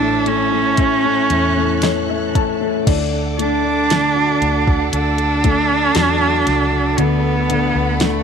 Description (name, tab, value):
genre	pop ballad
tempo	58 BPM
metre	4/4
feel	straight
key	D major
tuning	A4 = 440 Hz
part	rich cello	melody	0.0-8.2 s	A3 to D4	-17 LUFS	right 3 dB	slapback echo
part	dark upright piano	accompaniment	0.0-8.2 s	D3 to A5	-21 LUFS	left 12 dB	none
part	warm studio string section	sustained chords	0.0-8.2 s	A4 to F#6	-27 LUFS	left 1 dB	none
part	fingerpicked plugged-in steel-string acoustic guitar	arpeggios	0.0-8.2 s	A2 to F#4	-26 LUFS	right 12 dB	none
part	vintage muted fingered electric bass	bass	0.0-8.2 s	A1 to E2	-23 LUFS	equal	none
part	smooth R&B drum kit	drums	0.3-8.2 s	crash cymbal, hi-hat, kick drum, snare drum	-19 LUFS	equal	none
room	light reverb, small room ambience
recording	1960s-style stereo with parts hard left and right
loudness	-14 LUFS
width	side -7 dB against mid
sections	0.0-2.9 A section; 2.9-8.2 B section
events	upright piano fill 1.3-2.9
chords	0.0 A; 2.9 D; 7.0 Bm7/D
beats	0.78 1.82 | 2.87 3.90 4.93 5.96 | 6.98 8.01